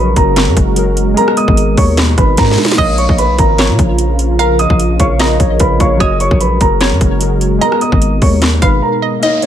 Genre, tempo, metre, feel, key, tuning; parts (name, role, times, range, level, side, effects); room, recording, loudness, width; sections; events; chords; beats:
hip hop, trap; 149 BPM; 4/4; half-time; A4 = 440 Hz
dark concert grand piano; melody; 0.0-9.5 s; Eb4 to Eb6; -16 LUFS; right 1 dB; low-pass filter, tape echo
warbly lo-fi synth keys; accompaniment; 0.0-9.5 s; Gb3 to F5; -20 LUFS; left 4 dB; chorus, low-pass filter
dark analog pad; sustained chords; 0.0-9.5 s; Cb3 to Bb4; -19 LUFS; right 3 dB; chorus
long sustained 808-style bass; bass; 0.0-8.8 s; Gb1 to Bb2; -14 LUFS; equal
trap drum kit; drums; 0.2-9.5 s; crash cymbal, handclaps, hi-hat, kick drum, rim click, snare drum; -14 LUFS; equal; overdrive
hollow square pluck; second line; 2.8-9.5 s; Db5 to F5; -22 LUFS; right 1 dB; chorus, tape echo
downlifter; sound effects; 9.2-9.5 s; -19 LUFS; right 1 dB
digital ambience; -9 LUFS; side -10 dB against mid
0.0-9.2 A section
drum fill 2.4-2.8; break 8.8-9.2
0.0 Gbadd9; 1.2 Abmadd9; 2.8 Bbm; 6.0 Gbadd9; 7.6 Abmadd9
0.37 0.77 | 1.17 1.57 1.98 2.38 | 2.78 3.19 3.59 3.99 | 4.39 4.80 5.20 5.60 | 6.00 6.41 6.81 7.21 | 7.62 8.02 8.42 8.82 | 9.22